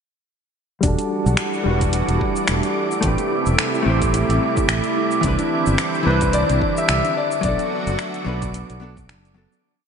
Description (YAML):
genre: sunset chillout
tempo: 109 BPM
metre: 4/4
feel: swing 57% on 16ths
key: E minor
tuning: A4 = 440 Hz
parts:
  - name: hollow-body jazz guitar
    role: accompaniment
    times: 0.8-9.6 s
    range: E3 to C5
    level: -24 LUFS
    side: equal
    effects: auto-pan, low-pass filter, diffuse ambient delay
  - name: lush unison pad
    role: sustained chords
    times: 0.8-9.6 s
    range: C3 to F#4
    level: -25 LUFS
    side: right 1 dB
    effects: chorus
  - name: steel pan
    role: arpeggios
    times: 0.8-9.6 s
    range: D4 to E4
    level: -30 LUFS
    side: right 1 dB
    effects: diffuse ambient delay
  - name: fingered electric bass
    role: bass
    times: 0.8-9.5 s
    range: E1 to C2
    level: -21 LUFS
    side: equal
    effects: none
  - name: deep house drum kit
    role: drums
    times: 0.8-9.6 s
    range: cabasa, finger snaps, hi-hat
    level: -26 LUFS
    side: equal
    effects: none
  - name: electronic kick drum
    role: drums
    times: 0.8-9.1 s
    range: none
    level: -25 LUFS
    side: equal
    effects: none
  - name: wind-like tuned noise texture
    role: texture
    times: 1.3-9.6 s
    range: D6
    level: -29 LUFS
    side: right 4 dB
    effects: built-in reverb, lush chorus
  - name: clear concert grand piano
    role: melody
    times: 6.1-9.1 s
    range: B4 to E5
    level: -22 LUFS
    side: left 4 dB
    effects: diffuse ambient delay
room: wet cathedral reverb, RT60 5.1 s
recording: dreamy mix soaked in reverb, nothing above 10.3 kHz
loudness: -17 LUFS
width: side -6 dB against mid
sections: 0.8-9.6 groove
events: filter sweep on hollow-body jazz guitar 0.8-9.6; fade-out 6.7-9.6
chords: 0.8 Em11; 3.0 Am9; 5.2 Cmaj9; 7.2 Bm7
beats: | 0.83 1.38 1.93 2.48 | 3.03 3.58 4.13 4.69 | 5.24 5.79 6.34 6.89 | 7.44 7.99 8.54 9.09